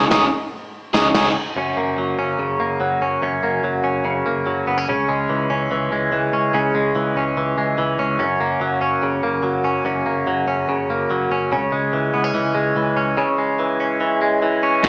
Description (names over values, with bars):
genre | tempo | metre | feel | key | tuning
jangly indie pop | 145 BPM | 4/4 | straight | F# mixolydian | A4 = 440 Hz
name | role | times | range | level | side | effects
combo organ | accompaniment | 0.0-1.3 s | D#4 to D#5 | -22 LUFS | equal | spring reverb
crunchy overdriven guitar | accompaniment | 0.0-1.3, 14.8-14.9 s | F#2 to G#4 | -23 LUFS | equal | slapback echo
vintage muted picked electric bass | bass | 0.0-14.9 s | F#1 to C#2 | -31 LUFS | equal | none
modern studio drum kit | drums | 0.1-1.3, 14.8-14.9 s | crash cymbal, kick drum, snare drum | -26 LUFS | equal | none
direct-recorded clean electric guitar | arpeggios | 1.6-14.9 s | F#2 to C#4 | -21 LUFS | equal | subtle chorus, slapback echo
room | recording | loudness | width
light reverb, small room ambience | live gig heard through the venue's PA, club reverb, small speaker sound | -20 LUFS | mono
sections
0.0-1.6 A section; 1.6-14.8 B section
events
band accent 0.0-1.6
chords
0.0 C#sus2; 1.6 F#; 4.9 C#m; 8.2 F#; 11.5 C#m